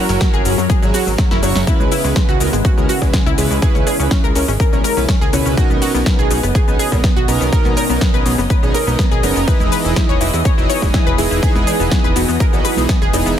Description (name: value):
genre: progressive house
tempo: 123 BPM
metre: 4/4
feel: straight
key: unclear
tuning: A4 = 439 Hz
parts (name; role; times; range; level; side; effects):
- lush unison pad; sustained chords; 0.0-13.3 s; C#3 to D#5; -24 LUFS; equal; chorus, vintage 12-bit sampler grit, sidechain pumping
- analog pluck; arpeggios; 0.0-13.3 s; F#3 to C#5; -20 LUFS; left 2 dB; chorus, sidechain pumping, dub echo
- chorused polysynth; stabs; 0.0-13.4 s; B2 to C#5; -21 LUFS; right 3 dB; sidechain pumping, dub echo
- plucky analog bass; bass; 0.1-13.4 s; E1 to F#2; -20 LUFS; equal; sidechain pumping
- big-room dance drum kit; drums; 0.1-13.4 s; hi-hat, shaker, snare drum; -24 LUFS; left 2 dB; overdrive, sidechain pumping on perc, studio reverb, sidechain pumping on hats
- breakbeat sampler-style drum kit; drums; 0.1-13.4 s; hi-hat, snare drum; -33 LUFS; left 1 dB; none
- electronic kick drum; drums; 0.2-13.0 s; none; -15 LUFS; equal; overdrive, studio reverb
- bongos, congas and cowbell; percussion; 0.6-13.2 s; none; -30 LUFS; right 4 dB; none
room: digital ambience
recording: dense, heavily limited modern master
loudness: -12 LUFS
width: side -10 dB against mid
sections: 0.0-13.4 A section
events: drum fill 1.2-1.7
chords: 0.0 F#7; 1.7 C#m7; 5.6 Bmaj9; 9.5 Emaj7